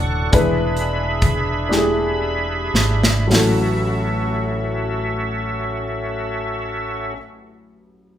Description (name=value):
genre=slow gospel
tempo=34-48 BPM (dotted quarters)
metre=6/8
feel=straight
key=A major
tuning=A4 = 442 Hz
part: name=warm upright piano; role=accompaniment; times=0.0-8.2 s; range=A1 to D5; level=-22 LUFS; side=left 1 dB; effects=none
part: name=bright tonewheel organ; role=sustained chords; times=0.0-7.1 s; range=C#4 to C#6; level=-24 LUFS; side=right 1 dB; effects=fast rotary speaker, overdrive, chorus vibrato
part: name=fingered electric bass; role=bass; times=0.0-7.1 s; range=D#1 to A1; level=-24 LUFS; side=equal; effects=none
part: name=modern studio drum kit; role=drums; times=0.3-3.6 s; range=hi-hat, kick drum, snare drum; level=-20 LUFS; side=equal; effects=none
room=moderate large studio reverb, RT60 1.2 s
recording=band playing live in one room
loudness=-17 LUFS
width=side -10 dB against mid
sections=0.0-3.3 A section; 3.3-6.8 B section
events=slowing down 0.0-3.3; drum fill 1.7-3.3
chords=0.3 E7; 3.3 A6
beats=| 0.33 1.70 | 3.31 5.07